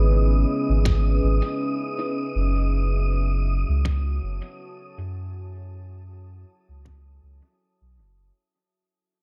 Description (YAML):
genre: ambient dub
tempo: 80 BPM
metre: 4/4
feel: swing 55% on 16ths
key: F# dorian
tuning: A4 = 440 Hz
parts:
  - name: deep dark ambient pad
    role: sustained chords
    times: 0.0-8.4 s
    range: C#4 to A5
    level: -31 LUFS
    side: equal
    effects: chorus, built-in reverb
  - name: soft dub sub bass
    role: bass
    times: 0.0-8.3 s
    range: F#1 to F#2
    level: -24 LUFS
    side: equal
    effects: none
  - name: wind-like tuned noise texture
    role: texture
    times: 0.0-8.4 s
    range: D#6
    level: -38 LUFS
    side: equal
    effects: built-in reverb
  - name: electronic kick drum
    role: drums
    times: 0.9-7.0 s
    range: none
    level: -27 LUFS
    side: equal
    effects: overdrive, small room reverb
  - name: electronic snare drum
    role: drums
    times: 0.9-7.0 s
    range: none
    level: -37 LUFS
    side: equal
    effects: low-pass filter on hats, small room reverb, low-pass filter on perc, low-pass filter on snare, dub echo
  - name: filtered dub chord stab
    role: stabs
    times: 2.0-8.2 s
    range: B3 to F#5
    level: -42 LUFS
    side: equal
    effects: none
room: little or no reverb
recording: none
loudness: -23 LUFS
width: mono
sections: 0.0-8.4 A section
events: fade-out 0.0-8.4; filter sweep on drum 0.0-8.4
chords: 0.0 C#m9; 2.4 F#m9